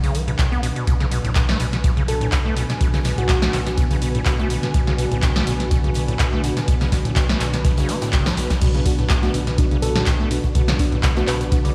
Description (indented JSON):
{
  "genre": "acid house",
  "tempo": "124 BPM",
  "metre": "4/4",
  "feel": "swing 54% on 16ths",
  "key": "B dorian",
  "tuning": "A4 = 440 Hz",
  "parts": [
    { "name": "acid bass, square", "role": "riff", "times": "0.0-11.7 s", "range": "B1 to B3", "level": "-27 LUFS", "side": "equal", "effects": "overdrive, cassette tape, tape echo" },
    { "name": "warm sub bass", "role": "bass", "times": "0.0-11.7 s", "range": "F#1 to B1", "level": "-28 LUFS", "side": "equal", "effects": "tube saturation, sidechain pumping" },
    { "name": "open jazz drum kit", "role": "drums", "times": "0.0-11.7 s", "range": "hi-hat, snare drum", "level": "-40 LUFS", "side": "equal", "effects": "none" },
    { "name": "punchy analog drum machine", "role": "drums", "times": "0.0-11.7 s", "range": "crash cymbal, handclaps, hi-hat, snare drum", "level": "-28 LUFS", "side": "equal", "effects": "none" },
    { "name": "ethereal airy pad", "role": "texture", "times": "0.0-11.7 s", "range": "D4 to G#5", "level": "-33 LUFS", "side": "equal", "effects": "ensemble chorus, built-in reverb, sidechain pumping" },
    { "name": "electronic kick drum", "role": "drums", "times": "0.4-11.6 s", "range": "none", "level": "-23 LUFS", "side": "equal", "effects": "none" },
    { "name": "warm analog pad", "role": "sustained chords", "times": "0.9-11.7 s", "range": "D3 to F#4", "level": "-32 LUFS", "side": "equal", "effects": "chorus, sidechain pumping" },
    { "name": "soft struck synth lead", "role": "melody", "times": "2.1-3.9, 9.8-11.7 s", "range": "F#4 to D5", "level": "-31 LUFS", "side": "equal", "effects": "chorus, vintage 12-bit sampler grit, tape echo" },
    { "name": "deep mellow chord stab", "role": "stabs", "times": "8.9-11.6 s", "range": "B3 to F#4", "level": "-31 LUFS", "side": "equal", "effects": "chorus, tape echo" }
  ],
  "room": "light reverb",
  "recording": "played on a big sound system in a bare room, stone room reverb",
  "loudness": "-20 LUFS",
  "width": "mono",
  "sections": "0.0-8.6 A section; 8.6-11.7 B section",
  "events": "drop 8.6-11.7",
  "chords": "0.0 Bm"
}